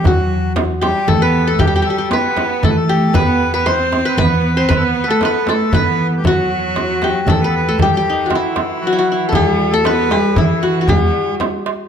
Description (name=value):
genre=Arabic maqam ensemble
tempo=116 BPM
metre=3/4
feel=straight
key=E minor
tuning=A4 = 439 Hz
part: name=qanun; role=melody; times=0.0-11.9 s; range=D#4 to C5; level=-17 LUFS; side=left 2 dB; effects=none
part: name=accordion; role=second line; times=0.0-11.4 s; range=E4 to C5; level=-23 LUFS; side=left 1 dB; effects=none
part: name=warm studio cello section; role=second line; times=0.0-11.4 s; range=D#3 to C4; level=-21 LUFS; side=right 2 dB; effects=slapback echo
part: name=upright bass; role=bass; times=0.0-11.1 s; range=E2 to E3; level=-20 LUFS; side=equal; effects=none
part: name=darbuka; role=percussion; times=0.0-11.8 s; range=none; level=-24 LUFS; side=right 9 dB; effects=none
part: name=frame drum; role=percussion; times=0.1-11.5 s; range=none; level=-20 LUFS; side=left 2 dB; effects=none
room=light reverb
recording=close, detailed microphones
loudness=-13 LUFS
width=side -8 dB against mid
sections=0.0-9.3 A section; 9.3-11.9 B section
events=none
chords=none